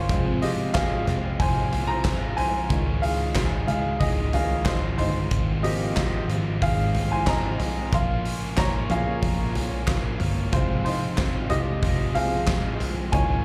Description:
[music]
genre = piano-driven pop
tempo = 92 BPM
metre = 4/4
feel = straight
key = unclear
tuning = A4 = 440 Hz
[part]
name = clear upright piano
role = accompaniment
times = 0.0-13.4 s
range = Eb3 to C6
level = -30 LUFS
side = equal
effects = slapback echo
[part]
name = crunchy overdriven guitar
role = riff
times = 0.0-13.4 s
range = F2 to F4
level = -34 LUFS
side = equal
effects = slapback echo
[part]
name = vintage muted picked electric bass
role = bass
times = 0.0-13.4 s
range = F1 to Db2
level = -30 LUFS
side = equal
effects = none
[part]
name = huge arena drum kit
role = drums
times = 0.1-13.3 s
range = handclaps, hi-hat, kick drum, snare drum, toms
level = -28 LUFS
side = equal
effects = none
[sound]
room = moderate club reverb, RT60 0.5 s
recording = live gig heard through the venue's PA, club reverb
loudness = -24 LUFS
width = mono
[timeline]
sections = 0.0-13.4 A section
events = upright piano solo 0.0-13.4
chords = 0.1 Fm; 2.7 Dbadd9; 5.3 Ab6; 7.9 Bbm; 10.5 Fm

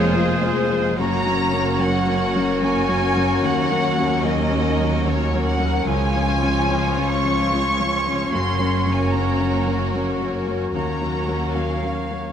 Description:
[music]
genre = cinematic, emotional film score for orchestra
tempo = 74 BPM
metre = 3/4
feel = rubato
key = unclear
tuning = A4 = 437 Hz
[part]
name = rich symphonic violin section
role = melody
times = 0.0-12.3 s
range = C5 to Db6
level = -27 LUFS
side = equal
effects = none
[part]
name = clear oboe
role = second line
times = 0.0-12.3 s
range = C5 to Db5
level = -30 LUFS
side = right 2 dB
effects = none
[part]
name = hollow concert flute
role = second line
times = 0.0-12.3 s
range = C5 to Db6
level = -29 LUFS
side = equal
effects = none
[part]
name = rich symphonic violin section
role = second line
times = 0.0-12.3 s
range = F4 to Db5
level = -30 LUFS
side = left 1 dB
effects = none
[part]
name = warm clarinet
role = second line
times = 0.0-12.3 s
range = F4 to Ab4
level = -31 LUFS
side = left 2 dB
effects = none
[part]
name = felt-muted upright piano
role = accompaniment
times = 0.0-12.3 s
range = Db2 to Db5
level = -27 LUFS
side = left 3 dB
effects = none
[part]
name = rich symphonic viola section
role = accompaniment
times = 0.0-12.3 s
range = F3 to F4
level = -29 LUFS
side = right 1 dB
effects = none
[part]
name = mellow French horn section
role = sustained chords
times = 0.0-12.3 s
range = F3 to Gb4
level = -28 LUFS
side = left 3 dB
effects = none
[part]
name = concert harp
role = arpeggios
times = 0.0-12.3 s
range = F2 to C6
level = -29 LUFS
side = left 9 dB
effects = none
[part]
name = bright symphonic double bass section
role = bass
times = 0.0-12.3 s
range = F1 to Eb2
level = -27 LUFS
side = right 4 dB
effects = none
[part]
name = clear chamber cello section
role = bass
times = 0.0-12.3 s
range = Db2 to Gb2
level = -27 LUFS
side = right 2 dB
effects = none
[sound]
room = light reverb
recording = close, detailed microphones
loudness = -18 LUFS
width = side -8 dB against mid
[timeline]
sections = 0.0-12.3 A section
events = none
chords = 0.0 Fm; 1.0 Gb; 3.4 Ebm7; 5.9 Db; 8.3 Gb; 10.7 Ebm7

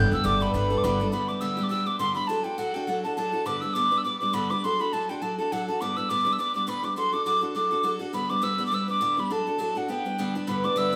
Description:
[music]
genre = celtic folk, Celtic reel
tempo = 206 BPM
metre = 4/4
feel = swing 56% on 8ths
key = G major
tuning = A4 = 440 Hz
[part]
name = mellow hollow tin whistle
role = melody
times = 0.0-11.0 s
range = F#5 to G6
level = -29 LUFS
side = equal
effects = none
[part]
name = cimbalom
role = second line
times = 0.0-3.5, 10.5-11.0 s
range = A4 to G5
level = -33 LUFS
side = equal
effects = none
[part]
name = picked steel-string acoustic guitar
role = accompaniment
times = 0.0-11.0 s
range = G2 to B4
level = -32 LUFS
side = equal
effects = none
[part]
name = upright bass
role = bass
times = 0.0-1.1 s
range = G1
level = -29 LUFS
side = equal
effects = none
[sound]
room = wet large studio reverb, RT60 1.2 s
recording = band playing live in one room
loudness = -26 LUFS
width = mono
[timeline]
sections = 0.0-1.1 A section; 1.1-10.5 B section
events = none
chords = 0.0 Gadd9; 1.1 G; 2.3 D/F#; 3.5 G; 4.6 D/F#; 5.8 G; 7.0 D/F#; 8.1 G; 9.3 D/F#; 9.9 G

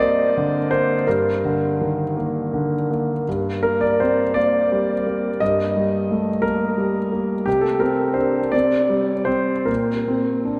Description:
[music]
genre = neoclassical minimalist piano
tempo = 50-59 BPM (dotted quarters)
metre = 6/8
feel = rubato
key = unclear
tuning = A4 = 440 Hz
[part]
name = clear concert grand piano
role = solo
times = 0.0-10.6 s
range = G2 to Eb5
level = -20 LUFS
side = equal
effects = analog delay
[sound]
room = wet plate reverb, RT60 3.6 s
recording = dreamy mix soaked in reverb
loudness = -20 LUFS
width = mono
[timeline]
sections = 0.0-10.6 A section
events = none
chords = 0.0 Gm; 3.3 Eb/G; 7.5 C5; 9.7 Bbsus2

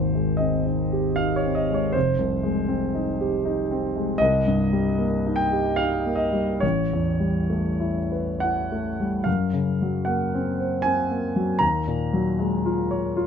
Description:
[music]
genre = classical, impressionist solo piano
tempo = 63-81 BPM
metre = 3/4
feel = rubato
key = unclear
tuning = A4 = 443 Hz
[part]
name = warm grand piano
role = solo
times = 0.0-13.3 s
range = F1 to Bb5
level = -21 LUFS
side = equal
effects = none
[sound]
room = light reverb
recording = dark, warm production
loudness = -21 LUFS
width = side -7 dB against mid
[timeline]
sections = 0.0-13.3 A section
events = none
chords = 0.0 Abmaj7; 2.0 Fm9; 4.2 Cm7; 6.6 A9; 9.3 Gbmaj7#11; 11.6 Ebm11

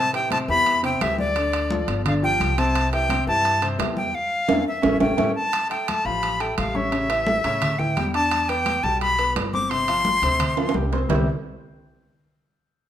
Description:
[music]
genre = Afro-Cuban jazz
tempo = 172 BPM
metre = 4/4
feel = straight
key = C major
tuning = A4 = 439 Hz
[part]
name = breathy bright silver concert flute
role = melody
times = 0.0-10.7 s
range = D5 to D6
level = -22 LUFS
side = left 1 dB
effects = none
[part]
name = warm upright piano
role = accompaniment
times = 0.0-11.3 s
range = C3 to D6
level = -26 LUFS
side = left 2 dB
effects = none
[part]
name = upright bass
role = bass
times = 0.0-11.3 s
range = G1 to A2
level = -28 LUFS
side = equal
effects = none
[part]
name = congas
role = percussion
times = 0.1-11.2 s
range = none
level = -30 LUFS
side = left 1 dB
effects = none
[part]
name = timbales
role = percussion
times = 0.1-11.2 s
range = none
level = -28 LUFS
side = right 6 dB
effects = none
[sound]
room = moderate large studio reverb, RT60 1.3 s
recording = minimal, uncompressed stereo recording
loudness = -19 LUFS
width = side -10 dB against mid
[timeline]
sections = 0.0-5.5 A section; 5.5-11.1 B section; 11.1-12.5 C section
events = band accent 4.1-5.5; drum fill 4.5-5.5, 10.6-11.1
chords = 0.0 Am7; 1.4 Dm; 2.1 G5; 2.8 C; 4.1 Dmadd9; 4.8 A7; 5.5 A7b13; 6.9 A7; 8.3 Em7; 9.7 G7sus4; 11.1 Cmaj7

